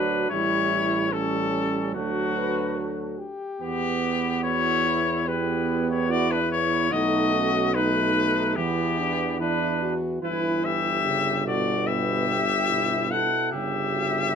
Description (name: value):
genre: classical, brass quintet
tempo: 73 BPM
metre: 4/4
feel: straight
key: unclear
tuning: A4 = 443 Hz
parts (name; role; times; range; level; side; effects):
- warm trumpet; melody; 0.0-14.3 s; F#4 to F#5; -25 LUFS; left 6 dB; none
- mellow flugelhorn; second line; 0.0-14.3 s; A3 to A4; -31 LUFS; right 8 dB; none
- mellow French horn; accompaniment; 0.0-14.3 s; C#4 to B4; -31 LUFS; left 2 dB; none
- warm trombone; accompaniment; 0.0-14.3 s; B2 to B3; -31 LUFS; right 6 dB; none
- warm tuba; bass; 0.0-14.3 s; G1 to E2; -29 LUFS; right 3 dB; none
room: moderate large studio reverb, RT60 1.0 s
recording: minimal, uncompressed stereo recording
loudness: -22 LUFS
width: side -7 dB against mid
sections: 0.0-14.3 A section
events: none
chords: 0.3 A7; 2.0 D; 3.6 Em; 6.9 B7; 8.6 Em; 10.2 Em/G; 13.5 Em69/G